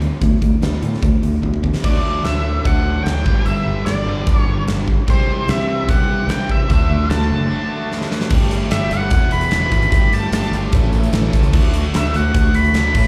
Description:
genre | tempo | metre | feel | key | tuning
classic rock | 148 BPM | 4/4 | straight | unclear | A4 = 443 Hz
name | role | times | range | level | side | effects
crunchy overdriven guitar | riff | 0.0-13.1 s | E2 to A4 | -25 LUFS | equal | slapback echo
fingered electric bass | bass | 0.0-13.1 s | E1 to A2 | -22 LUFS | equal | none
huge arena drum kit | drums | 0.0-13.0 s | crash cymbal, hi-hat, kick drum, snare drum | -21 LUFS | equal | none
octave-fuzz lead guitar | melody | 1.8-13.1 s | C5 to B5 | -24 LUFS | equal | distortion, slapback echo, analog delay
room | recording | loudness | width
small room ambience | live gig heard through the venue's PA, club reverb | -17 LUFS | mono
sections
0.0-1.8 A section; 1.8-8.3 B section; 8.3-13.1 C section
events
drum fill 1.4-1.8, 7.9-8.3; break 7.5-8.3; lead electric guitar solo 8.3-13.1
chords
0.0 D5; 1.8 D; 3.3 G; 5.1 C; 6.7 Dadd9; 8.3 Gsus2; 9.1 E; 9.9 Gsus2; 10.7 A; 11.5 D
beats
| 0.22 0.63 1.03 1.43 | 1.84 2.24 2.65 3.05 | 3.46 3.86 4.26 4.67 | 5.08 5.48 5.88 6.29 | 6.69 7.10 7.50 7.91 | 8.31 8.71 9.12 9.52 | 9.92 10.32 10.73 11.13 | 11.54 11.94 12.34 12.74

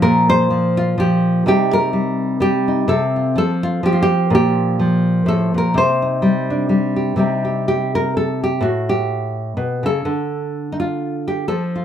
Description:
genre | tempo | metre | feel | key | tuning
folk, solo fingerstyle acoustic guitar | 126 BPM | 3/4 | swing 56% on 8ths | C dorian | A4 = 440 Hz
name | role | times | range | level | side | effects
nylon-string guitar | solo | 0.0-11.8 s | A2 to C5 | -15 LUFS | equal | none
room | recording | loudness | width
light reverb | close, detailed microphones | -15 LUFS | side -9 dB against mid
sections
0.0-7.2 A section; 7.2-11.8 B section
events
none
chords
0.0 Bbsus2; 1.5 Cm; 2.9 F/C; 4.3 Bb5; 5.7 Cmadd9; 7.2 Cm; 8.6 A7; 10.1 N.C.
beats
| 0.02 0.50 0.97 | 1.45 1.93 2.41 | 2.88 3.36 3.84 | 4.32 4.79 5.27 | 5.75 6.22 6.70 | 7.18 7.66 8.14 | 8.62 9.10 9.57 | 10.05 10.53 11.01 | 11.49

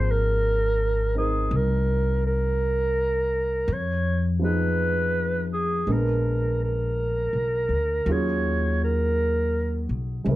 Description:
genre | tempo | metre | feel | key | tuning
jazz ballad | 55 BPM | 4/4 | swing 67% on 8ths | Eb minor | A4 = 440 Hz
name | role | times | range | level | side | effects
warm clarinet | melody | 0.0-9.9 s | Ab4 to Db5 | -25 LUFS | right 1 dB | none
warm grand piano | accompaniment | 0.0-10.4 s | F3 to Bb4 | -31 LUFS | right 2 dB | none
upright bass | bass | 0.0-10.4 s | Ab1 to F2 | -25 LUFS | left 1 dB | none
room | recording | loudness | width
light reverb | dark, warm production | -22 LUFS | side -16 dB against mid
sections
0.0-10.4 A section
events
clarinet solo 0.0-10.4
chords
0.0 Ab69; 3.7 Fm7b5; 5.9 Bb7b9; 8.1 Ebm11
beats
0.42 1.51 2.59 | 3.68 4.77 5.86 6.96 | 8.06 9.16 10.26

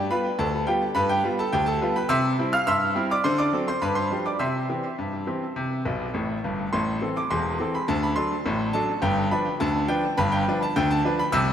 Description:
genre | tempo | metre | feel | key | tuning
ragtime piano | 104 BPM | 2/4 | straight | unclear | A4 = 440 Hz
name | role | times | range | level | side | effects
bright grand piano | solo | 0.0-11.5 s | E1 to F6 | -22 LUFS | equal | tape echo
room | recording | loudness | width
wet lush hall reverb, RT60 2.2 s | dreamy mix soaked in reverb | -22 LUFS | side -9 dB against mid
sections
0.0-6.7 A section; 6.7-11.5 A section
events
grand piano fill 5.9-6.7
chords
0.0 G7; 2.1 C; 3.2 D7; 3.8 G7; 4.4 C; 6.7 Am; 7.9 D7; 9.0 G7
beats
0.38 | 0.95 1.53 | 2.10 2.67 | 3.25 3.82 | 4.40 4.98 | 5.56 6.14 | 6.72 7.30 | 7.88 8.45 | 9.03 9.60 | 10.18 10.75 | 11.33

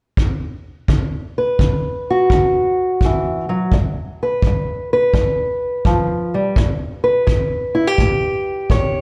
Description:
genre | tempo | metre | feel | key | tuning
acoustic country blues, solo or duo | 84 BPM | 4/4 | swing 66% on 8ths | D major | A4 = 440 Hz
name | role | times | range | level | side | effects
kick drum | drums | 0.2-8.9 s | none | -21 LUFS | equal | none
fingerpicked old ladder-braced acoustic guitar | melody | 0.9-9.0 s | A2 to C#5 | -19 LUFS | equal | slapback echo
room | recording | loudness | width
studio reverb | live gig heard through the venue's PA, club reverb | -18 LUFS | mono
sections
0.9-9.0 A section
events
none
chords
0.0 N.C.; 0.9 D; 3.7 G; 6.6 A7(no3)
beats
0.17 | 0.88 1.59 2.31 3.02 | 3.73 4.44 5.15 5.86 | 6.57 7.28 7.99 8.70

